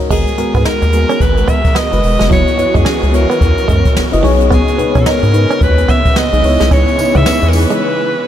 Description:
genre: R&B, new jack swing.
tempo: 109 BPM.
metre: 4/4.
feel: swing 61% on 16ths.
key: G# minor.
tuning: A4 = 440 Hz.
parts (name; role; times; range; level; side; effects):
mellow FM electric piano; accompaniment; 0.0-8.3 s; G#3 to D#5; -17 LUFS; left 3 dB; chorus.
jazz brush drum kit; drums; 0.0-7.8 s; crash cymbal, hi-hat, kick drum, snare drum, tambourine; -16 LUFS; equal; none.
bright alto saxophone; melody; 0.1-8.3 s; G#4 to E5; -17 LUFS; right 1 dB; diffuse ambient delay.
dark studio string section; sustained chords; 0.1-8.3 s; C#3 to A#4; -21 LUFS; right 1 dB; stereo widening.
direct-recorded clean electric guitar; riff; 0.1-7.8 s; F#3 to D#4; -20 LUFS; right 4 dB; lush chorus.
round analog bass; bass; 0.1-7.7 s; E1 to C#3; -14 LUFS; equal; none.
room: moderate huge ambient reverb, RT60 4.6 s.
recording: dreamy mix soaked in reverb.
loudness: -10 LUFS.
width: side -10 dB against mid.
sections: 0.1-8.3 A section.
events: break 7.8-8.3.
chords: 0.1 G#m9; 2.3 F#7sus4; 4.2 B69; 6.4 C#m9.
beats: | 0.11 0.66 1.21 1.76 | 2.31 2.86 3.41 3.96 | 4.51 5.06 5.61 6.16 | 6.71 7.26 7.81.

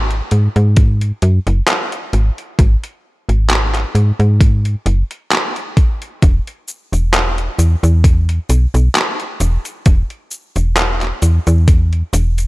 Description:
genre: vaporwave.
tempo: 66 BPM.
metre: 4/4.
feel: swing 54% on 16ths.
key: E major.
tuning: A4 = 440 Hz.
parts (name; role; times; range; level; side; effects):
slap-like FM bass; bass; 0.0-12.5 s; E1 to G#2; -13 LUFS; equal; none.
detuned 8-bit digital drum machine; drums; 0.1-12.5 s; cabasa, handclaps, hi-hat; -19 LUFS; equal; overdrive, gated reverb.
electronic kick drum; drums; 0.8-11.9 s; none; -11 LUFS; equal; overdrive.
room: little or no reverb.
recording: none.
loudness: -12 LUFS.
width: side -20 dB against mid.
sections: 0.0-12.5 A section.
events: none.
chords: none.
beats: 0.77 1.68 | 2.59 3.50 4.41 5.31 | 6.22 7.13 8.04 8.95 | 9.86 10.77 11.68.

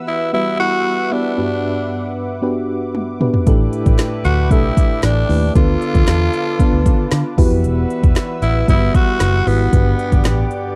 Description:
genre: 1980s-style pop.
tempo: 115 BPM.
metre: 4/4.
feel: straight.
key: unclear.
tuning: A4 = 440 Hz.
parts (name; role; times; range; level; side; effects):
mellow FM electric piano; accompaniment; 0.0-10.8 s; G2 to B4; -23 LUFS; equal; chorus, tremolo.
warm analog pad; sustained chords; 0.0-10.8 s; A4 to E6; -32 LUFS; equal; chorus.
growling tenor saxophone; melody; 0.1-10.5 s; B3 to F#4; -22 LUFS; equal; tape echo.
deep house drum kit; drums; 2.9-10.6 s; hi-hat, kick drum, snare drum, tambourine, toms; -17 LUFS; equal; none.
mellow horn section; stabs; 3.5-10.8 s; D3 to B4; -31 LUFS; equal; none.
vintage muted fingered electric bass; bass; 3.5-10.4 s; E1 to D3; -19 LUFS; equal; none.
group handclap; percussion; 4.0-10.4 s; none; -42 LUFS; equal; none.
room: digital ambience.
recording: dry, close 1970s-style studio recording.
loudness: -16 LUFS.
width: mono.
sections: 0.0-10.8 A section.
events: drum fill 2.9-3.5.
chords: 0.0 Emadd9; 1.4 Gmaj7; 3.5 A7sus4; 5.6 Dm6; 7.4 Emadd9; 9.7 Gmaj7.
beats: 0.34 0.86 | 1.38 1.90 2.42 2.95 | 3.47 3.99 4.51 5.03 | 5.55 6.08 6.60 7.12 | 7.64 8.16 8.69 9.21 | 9.73 10.25.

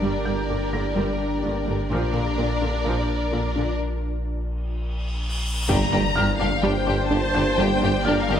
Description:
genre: cinematic, hybrid orchestral and electronic film score.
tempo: 127 BPM.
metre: 4/4.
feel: straight.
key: G minor.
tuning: A4 = 442 Hz.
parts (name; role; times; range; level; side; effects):
warm symphonic violin section; second line; 0.0-8.4 s; D4 to D5; -29 LUFS; left 2 dB; none.
warm symphonic viola section; accompaniment; 0.0-3.8, 6.6-8.4 s; D3 to C5; -29 LUFS; right 1 dB; none.
dark French horn section; sustained chords; 0.0-8.4 s; Bb3 to D4; -32 LUFS; left 6 dB; none.
ethereal airy pad; sustained chords; 0.0-8.4 s; Bb3 to D5; -31 LUFS; right 1 dB; ensemble chorus, built-in reverb.
tight sequenced synth; arpeggios; 0.0-8.4 s; G3 to Bb4; -31 LUFS; equal; chorus, tape echo.
punchy sub bass; bass; 0.0-8.4 s; G1 to Bb1; -28 LUFS; equal; none.
rich symphonic cello section; bass; 0.0-8.4 s; G2 to Bb2; -31 LUFS; right 2 dB; none.
rich symphonic double bass section; bass; 0.0-8.4 s; G1 to Bb1; -30 LUFS; right 3 dB; none.
impact and cymbal swell; sound effects; 0.0, 4.9-7.6 s; none; -29 LUFS; equal; none.
felt-muted upright piano; texture; 0.0-8.4 s; F6 to Bb6; -33 LUFS; equal; tape echo.
warm symphonic violin section; melody; 5.7-8.4 s; D5 to Bb5; -26 LUFS; left 4 dB; none.
clear tuba; bass; 5.7-8.4 s; G1; -28 LUFS; right 3 dB; none.
room: moderate scoring stage reverb, RT60 1.7 s.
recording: none.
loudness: -21 LUFS.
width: side -9 dB against mid.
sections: 0.0-5.7 A section; 5.7-8.4 B section.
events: break 3.8-5.7; cymbal swell 4.9-5.7; impact 5.7-7.6.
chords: 0.0 Gm; 1.9 Bb; 5.7 Gm.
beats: | 0.02 0.49 0.97 1.44 | 1.91 2.38 2.86 3.33 | 3.80 4.27 4.75 5.22 | 5.69 6.16 6.63 7.11 | 7.58 8.05.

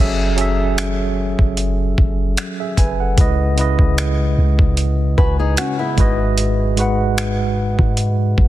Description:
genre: contemporary R&B.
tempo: 75 BPM.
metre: 4/4.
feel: swing 54% on 16ths.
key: F# dorian.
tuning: A4 = 440 Hz.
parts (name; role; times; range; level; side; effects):
tine electric piano; accompaniment; 0.0-8.5 s; G#2 to G#5; -19 LUFS; right 1 dB; medium stereo tremolo.
soft 808-style bass; bass; 0.0-8.5 s; F#1 to G#2; -19 LUFS; equal; none.
dusty soul sampler-style drum kit; drums; 0.4-8.5 s; finger snaps, hi-hat, kick drum; -18 LUFS; equal; overdrive, soft clipping on snare.
flamenco guitar; arpeggios; 5.2-6.2 s; B3 to B4; -24 LUFS; left 5 dB; tape echo.
room: little or no reverb.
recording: dense, heavily limited modern master.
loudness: -15 LUFS.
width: side -14 dB against mid.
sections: 0.0-8.5 A section.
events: none.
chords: 0.0 F#m7; 3.2 C#m7; 6.0 G#m7.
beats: 0.78 1.58 2.38 | 3.18 3.98 4.78 5.58 | 6.38 7.18 7.98.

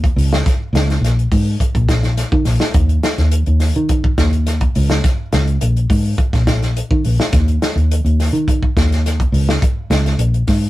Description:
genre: afrobeat.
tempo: 105 BPM.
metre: 4/4.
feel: straight.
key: unclear.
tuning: A4 = 439 Hz.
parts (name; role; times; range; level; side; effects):
fingered electric bass; bass; 0.0-10.7 s; Bb1 to Eb3; -15 LUFS; equal; none.
warm soul drum kit; drums; 0.0-10.6 s; hi-hat, kick drum, snare drum; -17 LUFS; equal; none.
room: moderate small room ambience, RT60 0.5 s.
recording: rough rehearsal-room recording.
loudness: -13 LUFS.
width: side -16 dB against mid.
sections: 0.0-10.7 A section.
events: none.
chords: none.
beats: | 0.46 1.03 1.60 2.17 | 2.75 3.32 3.89 4.46 | 5.03 5.61 6.18 6.75 | 7.32 7.90 8.47 9.04 | 9.61 10.19.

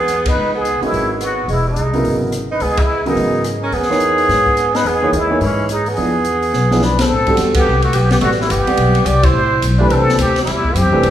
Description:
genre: modal jazz.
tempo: 214 BPM.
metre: 4/4.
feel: swing 62% on 8ths.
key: C# dorian, A dorian from 7.1 s.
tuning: A4 = 440 Hz.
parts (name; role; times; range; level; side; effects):
trumpet with plunger mute; melody; 0.0-11.1 s; C#4 to D5; -18 LUFS; left 1 dB; none.
clear tenor saxophone; second line; 0.0-11.1 s; E3 to G4; -21 LUFS; right 3 dB; none.
upright bass; bass; 0.0-11.1 s; E1 to G#2; -19 LUFS; left 1 dB; none.
open jazz drum kit; drums; 0.1-11.1 s; hi-hat, kick drum, ride cymbal, rim click, snare drum; -22 LUFS; left 1 dB; none.
warm concert grand piano; accompaniment; 0.8-11.1 s; C3 to F#5; -20 LUFS; right 1 dB; none.
room: wet recital hall reverb, RT60 1.6 s.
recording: recorded in a church or concert hall.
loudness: -13 LUFS.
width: side -11 dB against mid.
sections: 0.0-7.1 A section; 7.1-11.1 B section.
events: band accent 0.2, 2.7, 7.0, 7.5, 9.2; drum fill 6.5-7.1.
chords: 0.0 C#m9; 6.0 E7b9; 7.1 Am9; 9.3 C/A.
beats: 0.08 | 0.36 0.65 0.93 1.21 | 1.49 1.77 2.05 2.33 | 2.61 2.89 3.17 3.45 | 3.73 4.01 4.29 4.57 | 4.85 5.13 5.41 5.70 | 5.98 6.26 6.54 6.82 | 7.10 7.38 7.66 7.94 | 8.22 8.51 8.79 9.07 | 9.35 9.63 9.91 10.19 | 10.47 10.75 11.03.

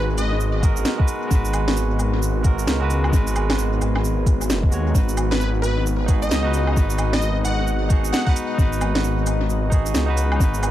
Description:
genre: future garage.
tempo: 132 BPM.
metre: 4/4.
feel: swing 62% on 16ths.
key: G# minor.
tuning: A4 = 440 Hz.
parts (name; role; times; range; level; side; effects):
plucky unison lead; melody; 0.0-0.5, 5.3-8.3 s; B4 to F#5; -28 LUFS; equal; tape echo.
barky tine electric piano; accompaniment; 0.0-10.7 s; G#3 to C#5; -27 LUFS; right 3 dB; auto-pan, sidechain pumping, tape echo.
deep dark ambient pad; sustained chords; 0.0-10.7 s; G#3 to D#5; -28 LUFS; left 2 dB; chorus, built-in reverb, sidechain pumping.
swelling detuned saw bass; bass; 0.0-10.7 s; F#1 to D#2; -22 LUFS; equal; none.
electronic cabasa, shaker, snare drum and woodblock; drums; 0.2-10.7 s; none; -26 LUFS; equal; studio reverb, tape echo.
electronic kick drum; drums; 0.6-10.5 s; none; -17 LUFS; equal; studio reverb.
room: digital ambience.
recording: echo-heavy mix.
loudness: -18 LUFS.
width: side -13 dB against mid.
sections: 0.0-10.7 A section.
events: none.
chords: 0.0 G#m7; 4.9 B/G#.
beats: 0.40 0.86 | 1.31 1.77 2.22 2.67 | 3.13 3.58 4.04 4.49 | 4.95 5.40 5.86 6.31 | 6.77 7.22 7.67 8.13 | 8.58 9.04 9.49 9.95 | 10.40.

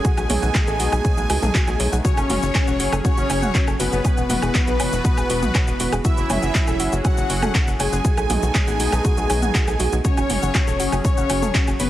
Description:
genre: melodic techno.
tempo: 120 BPM.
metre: 4/4.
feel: straight.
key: F# dorian.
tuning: A4 = 439 Hz.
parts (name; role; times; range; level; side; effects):
mellow synth brass; melody; 0.0-11.9 s; B3 to G#4; -25 LUFS; left 1 dB; chorus, sidechain pumping, tape echo.
big bright polysynth; second line; 0.0-11.9 s; B4 to G#5; -28 LUFS; left 1 dB; wide subtle chorus, sidechain pumping, dub echo.
warm analog pad; sustained chords; 0.0-11.9 s; E3 to G#4; -30 LUFS; right 1 dB; lush chorus, sidechain pumping.
woody wave-folded pluck; arpeggios; 0.0-11.9 s; F#4 to F#6; -31 LUFS; left 1 dB; chorus, cassette tape, sidechain pumping, dub echo.
electronic kick drum; drums; 0.0-11.6 s; none; -20 LUFS; equal; none.
house drum kit; drums; 0.0-11.9 s; handclaps, hi-hat, shaker, toms, woodblock; -25 LUFS; right 1 dB; sidechain pumping on perc, sidechain pumping on toms, sidechain pumping on hats.
tight sequencer bass; bass; 0.2-11.9 s; E1 to C#2; -24 LUFS; equal; sidechain pumping.
room: light reverb.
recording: heavily compressed radio sound, multiband compression.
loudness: -17 LUFS.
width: side -14 dB against mid.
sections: 0.0-11.9 A section.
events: none.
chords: 0.0 B7; 2.0 F#m; 4.0 E; 6.0 F#m7; 8.0 B7; 10.0 F#m.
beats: | 0.05 0.55 1.05 1.55 | 2.05 2.55 3.05 3.55 | 4.05 4.55 5.05 5.55 | 6.05 6.55 7.05 7.55 | 8.05 8.55 9.05 9.55 | 10.05 10.55 11.05 11.55.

